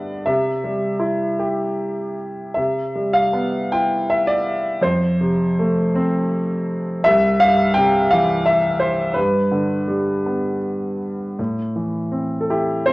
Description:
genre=classical, lyrical solo piano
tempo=75-87 BPM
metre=3/4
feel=rubato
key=C major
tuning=A4 = 444 Hz
part: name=clear grand piano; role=solo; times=0.0-12.9 s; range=C2 to G5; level=-17 LUFS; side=equal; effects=none
room=moderate recital hall reverb, RT60 1.5 s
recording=worn, warbling old tape, cassette tape, warbly pitch drift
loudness=-17 LUFS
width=side -21 dB against mid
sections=0.0-2.6 A section; 2.6-11.4 B section; 11.4-12.9 C section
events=none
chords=0.3 C; 2.6 Cmaj7; 4.8 F; 7.0 C; 9.2 G; 11.4 Am

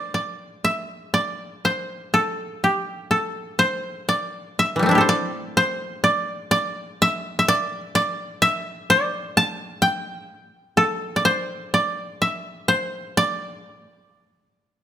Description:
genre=japanese traditional, Japanese chamber music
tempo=62 BPM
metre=4/4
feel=uneven beats, rubato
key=D suspended pentatonic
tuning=A4 = 440 Hz
part: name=koto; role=solo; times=0.0-14.8 s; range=E3 to A5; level=-20 LUFS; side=equal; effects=none
room=moderate recital hall reverb, RT60 1.7 s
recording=minimal, uncompressed stereo recording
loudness=-20 LUFS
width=side -10 dB against mid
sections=0.1-14.8 A section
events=none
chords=none

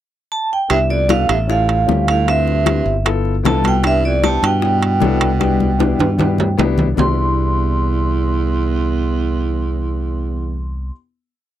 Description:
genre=Afro-Cuban jazz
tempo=153 BPM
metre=4/4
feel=straight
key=C major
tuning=A4 = 440 Hz
part: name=vibraphone with medium hard mallets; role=melody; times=0.3-10.9 s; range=D5 to C6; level=-20 LUFS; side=right 2 dB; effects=none
part: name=growling baritone saxophone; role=second line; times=0.7-10.9 s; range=E2 to D3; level=-23 LUFS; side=right 8 dB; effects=none
part: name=warm concert grand piano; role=accompaniment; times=0.7-10.9 s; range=B3 to A4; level=-23 LUFS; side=left 8 dB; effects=none
part: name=modern bright fingered electric bass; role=bass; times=0.7-10.9 s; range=G1 to G2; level=-18 LUFS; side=equal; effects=none
part: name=bongos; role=percussion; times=0.7-7.1 s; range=none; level=-23 LUFS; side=left 11 dB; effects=none
part: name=congas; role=percussion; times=0.7-7.1 s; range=none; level=-22 LUFS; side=left 3 dB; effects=none
part: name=timbales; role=percussion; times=0.7-7.1 s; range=none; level=-21 LUFS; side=right 6 dB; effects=none
room=moderate booth ambience, RT60 0.2 s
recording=dry, close 1970s-style studio recording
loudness=-14 LUFS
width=side -12 dB against mid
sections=0.0-0.7 pickup bar; 0.7-7.0 A section; 7.0-10.1 final chord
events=drum fill 5.4-7.0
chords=0.0 N.C.; 0.7 Cmaj9; 1.5 A7b13; 2.3 Dm11; 3.1 G13; 3.8 Cmaj9

